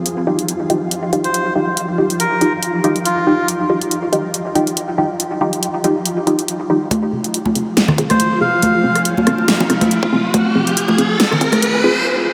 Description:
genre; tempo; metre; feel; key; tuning
deep dubstep; 140 BPM; 4/4; swing 54% on 16ths, half-time; F minor; A4 = 440 Hz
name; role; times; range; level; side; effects
flickering grainy texture; texture; 0.0-12.1 s; F3 to F4; -26 LUFS; equal; built-in reverb, subtle chorus
dubstep drum kit; drums; 0.1-11.7 s; hi-hat, rim click, snare drum; -22 LUFS; equal; none
filtered dub chord stab; stabs; 0.3-11.9 s; C4 to Ab4; -21 LUFS; equal; phaser, dub echo
melodica; melody; 1.2-3.5, 8.1-9.0 s; F4 to F5; -24 LUFS; equal; dub echo
electronic kick drum; drums; 6.9-11.5 s; none; -25 LUFS; equal; high-pass filter on kick, high-pass filter on room
congas and bongos; percussion; 6.9-11.6 s; none; -20 LUFS; equal; dub echo
riser; sound effects; 8.5-12.1 s; none; -23 LUFS; equal; none
room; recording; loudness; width
wet huge ambient reverb, RT60 8.5 s; dreamy mix soaked in reverb, high-pass filter; -16 LUFS; mono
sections
0.0-6.9 A section; 6.9-12.3 B section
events
build-up 6.9-12.3; filter sweep on synth stab 6.9-12.3; riser 8.5-12.1; break 12.1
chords
0.1 Ebadd9; 6.9 Fm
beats
| 0.06 0.48 0.91 1.34 | 1.77 2.20 2.63 3.06 | 3.48 3.91 4.34 4.77 | 5.20 5.63 6.05 6.48 | 6.91 7.34 7.77 8.20 | 8.63 9.05 9.48 9.91 | 10.34 10.77 11.20 11.63 | 12.05

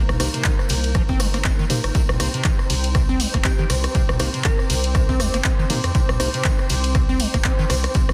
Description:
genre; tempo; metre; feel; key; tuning
acid house; 120 BPM; 4/4; swing 57% on 16ths; C minor; A4 = 437 Hz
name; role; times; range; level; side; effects
warm analog pad; sustained chords; 0.0-8.1 s; Bb3 to C5; -33 LUFS; equal; subtle chorus, sidechain pumping
acid bass, square; riff; 0.0-8.0 s; C3 to C4; -30 LUFS; equal; overdrive, analog chorus
saturated sub bass; bass; 0.0-8.1 s; G1 to F2; -26 LUFS; equal; sidechain pumping
granular cloud pad; texture; 0.0-8.1 s; Eb4 to D6; -37 LUFS; equal; built-in reverb, sidechain pumping
punchy analog drum machine; drums; 0.1-8.1 s; handclaps, hi-hat, ride cymbal, rim click, toms; -27 LUFS; equal; soft clipping on snare
tambourine; percussion; 0.1-8.1 s; none; -36 LUFS; equal; none
tine electric piano; stabs; 0.2-6.3 s; Bb3 to C5; -33 LUFS; equal; dub echo
electronic kick drum; drums; 0.4-8.1 s; none; -23 LUFS; equal; none
glassy wavetable pluck; melody; 3.4-4.9 s; G4 to Bb4; -36 LUFS; equal; chorus, tape echo
room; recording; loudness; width
light reverb; dense, heavily limited modern master, faint mains hum; -20 LUFS; mono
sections
0.0-8.1 A section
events
none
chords
0.0 Cm7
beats
0.45 0.95 1.45 | 1.95 2.45 2.95 3.45 | 3.95 4.45 4.95 5.45 | 5.95 6.45 6.95 7.45 | 7.95

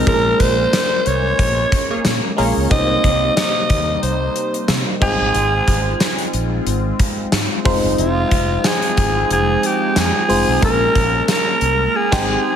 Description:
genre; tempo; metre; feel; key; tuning
1980s-style pop; 91 BPM; 4/4; swing 55% on 16ths; unclear; A4 = 436 Hz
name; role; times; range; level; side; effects
raspy alto saxophone; melody; 0.0-12.6 s; F4 to Eb5; -18 LUFS; equal; slapback echo
FM electric piano; accompaniment; 0.0-12.6 s; Ab3 to C5; -22 LUFS; left 1 dB; chorus, phaser, slapback echo
phased analog pad; sustained chords; 0.0-12.6 s; C3 to G5; -27 LUFS; right 3 dB; phaser, chorus
mellow fretless electric bass; bass; 0.0-12.3 s; F1 to C3; -21 LUFS; equal; lush chorus
gated 80s drum kit; drums; 0.1-12.3 s; crash cymbal, hi-hat, kick drum, snare drum, tambourine; -20 LUFS; equal; none
funky polysynth comp; stabs; 1.9-2.7, 12.1-12.3 s; Ab3 to Db5; -27 LUFS; right 2 dB; none
room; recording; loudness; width
moderate lush hall reverb, RT60 2.5 s; big arena sound; -14 LUFS; side -8 dB against mid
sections
0.0-12.6 A section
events
band accent 0.1-2.7, 10.6-12.6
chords
0.1 Bbm7; 2.7 Cm7; 5.0 Ab6; 7.7 Fm7; 10.6 Bbm7; 11.9 Abmaj7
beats
| 0.07 0.73 1.39 2.05 | 2.71 3.37 4.03 4.69 | 5.35 6.01 6.67 7.33 | 7.98 8.64 9.30 9.96 | 10.62 11.28 11.94

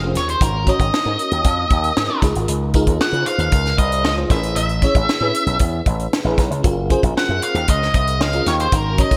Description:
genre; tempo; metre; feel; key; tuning
polished 1980s jazz-funk pop; 116 BPM; 4/4; straight; unclear; A4 = 442 Hz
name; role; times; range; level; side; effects
bell-like FM electric piano; accompaniment; 0.0-9.2 s; Db4 to Db5; -26 LUFS; equal; ensemble chorus
slap bass with an envelope filter; bass; 0.0-9.2 s; F1 to Db3; -23 LUFS; equal; none
octave-fuzz lead guitar; melody; 0.2-9.2 s; Bb4 to Gb5; -23 LUFS; equal; distortion, digital delay
tight funk drum kit; drums; 0.2-9.2 s; hi-hat, kick drum, snare drum; -22 LUFS; equal; gated reverb
room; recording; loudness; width
light reverb; bright 1980s-style digital production; -18 LUFS; mono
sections
0.0-9.2 A section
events
none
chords
0.4 Ab9sus4; 2.2 Db69; 4.3 Amaj9; 6.6 Gbmaj7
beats
| 0.41 0.93 1.45 1.97 | 2.48 3.00 3.52 4.04 | 4.56 5.08 5.60 6.12 | 6.64 7.16 7.68 8.20 | 8.72

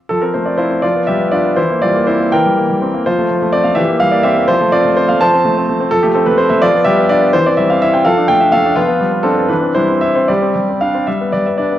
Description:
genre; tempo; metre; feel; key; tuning
classical-period piano sonatina; 75-86 BPM (dotted quarters); 6/8; rubato; F major; A4 = 440 Hz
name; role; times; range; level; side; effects
bright grand piano; solo; 0.1-11.8 s; E3 to A5; -11 LUFS; equal; none
room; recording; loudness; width
moderate recital hall reverb, RT60 1.5 s; worn, warbling old tape, cassette tape, warbly pitch drift; -11 LUFS; side -12 dB against mid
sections
0.1-11.8 A section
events
none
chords
0.1 F; 0.8 G7/F; 1.6 C7/E; 3.1 F; 3.8 C7/E; 4.5 F; 6.6 G7/F; 7.3 C/E; 8.1 Dm/F; 8.8 G7/F; 9.5 C/E; 10.3 Gsus4; 11.1 G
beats
| 0.10 0.84 | 1.57 2.33 | 3.07 3.79 | 4.51 5.22 | 5.93 6.63 | 7.34 8.05 | 8.77 9.51 | 10.29 11.07

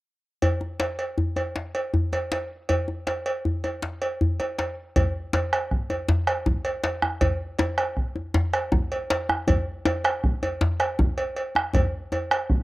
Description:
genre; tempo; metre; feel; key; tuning
west african traditional, West African drum ensemble; 106 BPM (dotted quarters); 12/8; straight; none; none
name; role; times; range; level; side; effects
cowbell; percussion; 0.4-12.5 s; none; -28 LUFS; right 2 dB; none
djembe; percussion; 0.4-12.4 s; none; -26 LUFS; left 1 dB; none
bombo; percussion; 5.0-12.6 s; none; -24 LUFS; right 1 dB; none
room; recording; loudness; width
light reverb, small room ambience; home recording on cassette; -23 LUFS; side -18 dB against mid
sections
0.4-5.0 A section; 5.0-12.6 B section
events
none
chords
none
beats
| 0.43 0.99 1.56 2.12 | 2.69 3.26 3.82 4.39 | 4.95 5.52 6.08 6.65 | 7.22 7.78 8.35 8.91 | 9.48 10.04 10.61 11.18 | 11.74 12.31

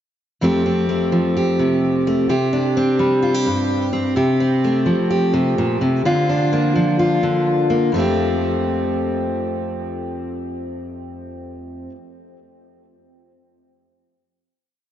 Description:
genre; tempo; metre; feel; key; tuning
indie folk with a building arrangement; 128 BPM; 4/4; straight; F major; A4 = 441 Hz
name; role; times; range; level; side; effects
fingerpicked steel-string acoustic guitar; solo; 0.4-11.9 s; F2 to G4; -17 LUFS; equal; tape echo
room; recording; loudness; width
wet huge ambient reverb, RT60 4.4 s; dreamy mix soaked in reverb, nothing above 7.5 kHz; -16 LUFS; side -10 dB against mid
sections
0.4-7.9 verse; 7.9-11.7 final chord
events
none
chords
0.4 Fadd9; 2.3 Csus2; 4.2 Fadd9/C; 6.0 Bb/D; 7.9 Fadd9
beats
| 0.41 0.88 1.35 1.81 | 2.29 2.75 3.22 3.69 | 4.16 4.63 5.10 5.57 | 6.04 6.51 6.98 7.45 | 7.92 8.39 8.86 9.32 | 9.79 10.26 10.72 11.19

